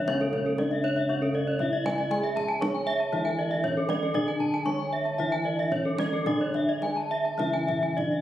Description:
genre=Balinese gamelan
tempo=116 BPM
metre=4/4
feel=uneven beats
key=C# pelog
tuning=A4 = 441 Hz
part: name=gamelan-type bronze metallophone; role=melody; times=0.0-8.2 s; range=C#4 to C#5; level=-32 LUFS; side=equal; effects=none
part: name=gamelan-type bronze metallophone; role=accompaniment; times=0.0-8.2 s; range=C#3 to G#3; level=-35 LUFS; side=right 1 dB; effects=none
part: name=gamelan-type bronze metallophone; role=arpeggios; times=0.0-8.2 s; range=A4 to C#6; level=-30 LUFS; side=left 2 dB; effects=none
part: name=gamelan-type bossed gongs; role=bass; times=0.0-8.2 s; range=C#2 to G#4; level=-32 LUFS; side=right 1 dB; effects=none
part: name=kendang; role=percussion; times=0.1-8.1 s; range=none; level=-37 LUFS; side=equal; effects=none
part: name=gamelan-type bronze metallophone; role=arpeggios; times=0.2-8.0 s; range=A4 to G#5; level=-31 LUFS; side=right 2 dB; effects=none
room=wet recital hall reverb, RT60 1.7 s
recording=recorded on a phone in the room, studio reverb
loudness=-24 LUFS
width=side -12 dB against mid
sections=0.0-8.2 A section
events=none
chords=none

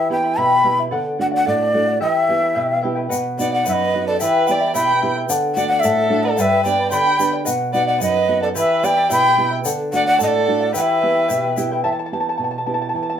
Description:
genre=andean folk, Andean ensemble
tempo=110 BPM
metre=2/4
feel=straight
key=E minor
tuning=A4 = 441 Hz
part: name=breathy bright large quena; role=melody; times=0.0-11.5 s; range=D5 to C6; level=-17 LUFS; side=equal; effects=none
part: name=charango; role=accompaniment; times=0.0-13.2 s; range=E4 to B5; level=-22 LUFS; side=left 3 dB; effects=none
part: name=nylon-string guitar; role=accompaniment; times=0.0-13.2 s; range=F#2 to G4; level=-24 LUFS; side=right 3 dB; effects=none
part: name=egg shaker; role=percussion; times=3.1-11.7 s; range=none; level=-29 LUFS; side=left 4 dB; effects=none
part: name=warm violin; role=second line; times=3.4-11.5 s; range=A4 to G5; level=-23 LUFS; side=right 1 dB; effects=none
room=moderate studio ambience, RT60 0.5 s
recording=band playing live in one room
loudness=-15 LUFS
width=side -9 dB against mid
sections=0.0-3.1 A section; 3.1-11.8 A section; 11.8-13.2 B section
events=charango solo 11.8-13.2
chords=0.0 Em; 0.9 D; 2.0 Em; 3.1 B; 4.2 Em; 5.3 D; 6.4 G; 7.5 B; 8.6 Em; 9.6 D; 10.7 Em

